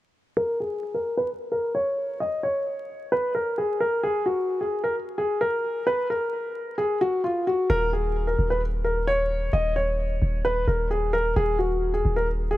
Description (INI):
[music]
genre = hip hop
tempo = 131 BPM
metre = 4/4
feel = half-time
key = Eb minor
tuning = A4 = 440 Hz
[part]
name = dark concert grand piano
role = melody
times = 0.4-12.6 s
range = F4 to Eb5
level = -24 LUFS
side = equal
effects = low-pass filter
[part]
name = long sustained 808-style bass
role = bass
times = 7.7-12.6 s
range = Eb1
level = -25 LUFS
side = equal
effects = none
[sound]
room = light reverb, small room ambience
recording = vinyl crackle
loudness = -23 LUFS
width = side -15 dB against mid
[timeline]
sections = 0.4-7.7 A section; 7.7-12.6 B section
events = filter sweep on grand piano 0.4-7.7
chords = 0.4 N.C.; 7.7 Eb7(no3)